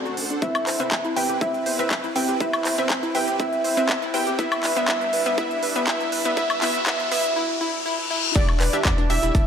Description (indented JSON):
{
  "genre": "progressive house",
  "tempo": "121 BPM",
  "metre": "4/4",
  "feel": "straight",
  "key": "unclear",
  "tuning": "A4 = 439 Hz",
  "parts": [
    { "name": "plucky unison lead", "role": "melody", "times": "0.0-9.5 s", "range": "A4 to G5", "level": "-26 LUFS", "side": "right 1 dB", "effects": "sidechain pumping, tape echo" },
    { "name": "supersaw pad", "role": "sustained chords", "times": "0.0-9.5 s", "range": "G3 to F#5", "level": "-33 LUFS", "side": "right 2 dB", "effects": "sidechain pumping" },
    { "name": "wide unison pluck", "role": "stabs", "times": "0.0-9.4 s", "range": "B3 to E5", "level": "-28 LUFS", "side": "left 1 dB", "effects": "sidechain pumping, tape echo" },
    { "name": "round analog bass", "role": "bass", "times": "0.0-9.5 s", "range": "E1 to G2", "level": "-32 LUFS", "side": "equal", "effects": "none" },
    { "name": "glassy wavetable pluck", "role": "arpeggios", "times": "0.1-9.4 s", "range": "D4 to D6", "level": "-29 LUFS", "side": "left 2 dB", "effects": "chorus, sidechain pumping, tape echo" },
    { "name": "big-room dance drum kit", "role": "drums", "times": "0.1-9.5 s", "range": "crash cymbal, handclaps, hi-hat, woodblock", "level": "-26 LUFS", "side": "equal", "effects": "high-pass filter on snare, sidechain pumping on hats, high-pass filter on hats, sidechain pumping on perc, high-pass filter on perc, sidechain pumping on cymbals, high-pass filter on cymbals" },
    { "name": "electronic kick drum", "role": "drums", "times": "0.4-9.5 s", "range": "none", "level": "-23 LUFS", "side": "equal", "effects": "high-pass filter on kick" },
    { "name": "riser and reverse cymbal", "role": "sound effects", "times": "3.4-8.4 s", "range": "none", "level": "-31 LUFS", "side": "left 2 dB", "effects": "none" },
    { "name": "glassy wavetable pluck", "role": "second line", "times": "8.4-9.5 s", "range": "D5 to E5", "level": "-32 LUFS", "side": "right 2 dB", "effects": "none" },
    { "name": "dusty soul sampler-style drum kit", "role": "drums", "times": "8.4-9.5 s", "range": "hi-hat, snare drum", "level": "-38 LUFS", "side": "right 1 dB", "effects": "none" }
  ],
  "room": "wet digital room reverb, RT60 1.2 s",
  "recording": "high-pass filter",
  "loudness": "-20 LUFS",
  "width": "side -8 dB against mid",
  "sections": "0.0-8.4 A section; 8.4-9.5 B section",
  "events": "build-up 0.0-8.4; filter sweep on synth arpeggio sound 0.0-8.4; filter sweep on digital synth lead 0.0-8.4; riser 3.4-8.4; reverse cymbal 7.4-8.4; drop 8.4-9.5",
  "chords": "0.4 Cmaj7/E; 4.4 G6; 8.4 Em7"
}